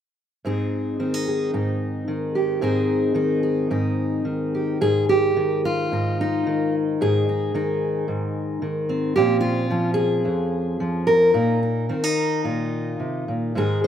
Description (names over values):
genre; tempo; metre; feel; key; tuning
folk, solo fingerstyle acoustic guitar; 110 BPM; 4/4; straight; Ab major; A4 = 437 Hz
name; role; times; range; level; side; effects
fingerpicked steel-string acoustic guitar; solo; 0.4-13.9 s; F2 to Bb4; -20 LUFS; equal; slapback echo
room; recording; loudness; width
little or no reverb; recorded outdoors, with no room sound; -20 LUFS; side -9 dB against mid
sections
0.4-4.8 A section; 4.8-13.9 B section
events
none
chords
0.4 Ab; 4.8 Ab5; 9.2 Bbmadd9; 11.3 Ebsus2/Bb